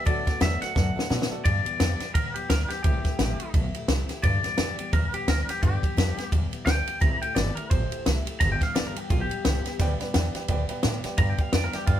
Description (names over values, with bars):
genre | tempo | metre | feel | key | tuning
rockabilly | 173 BPM | 4/4 | swing 59% on 8ths | G major | A4 = 442 Hz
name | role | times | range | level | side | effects
twangy electric guitar | melody | 0.0-12.0 s | F4 to Bb5 | -30 LUFS | left 1 dB | none
picked steel-string acoustic guitar | accompaniment | 0.0-12.0 s | G2 to G4 | -37 LUFS | left 5 dB | none
warm upright piano | accompaniment | 0.1-1.4, 9.8-12.0 s | A4 to G5 | -35 LUFS | right 4 dB | none
upright bass | bass | 0.1-12.0 s | G1 to B2 | -27 LUFS | equal | none
compact cocktail drum kit | drums | 0.1-12.0 s | kick drum, ride cymbal, snare drum | -26 LUFS | equal | none
room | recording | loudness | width
light reverb | band playing live in one room | -23 LUFS | side -11 dB against mid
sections
0.0-1.5 A section; 1.5-12.0 B section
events
drum fill 0.8-1.5; clean electric guitar solo 1.5-12.0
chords
0.1 D6; 1.5 G6; 2.8 C6; 4.2 G6; 7.0 C6; 8.4 G6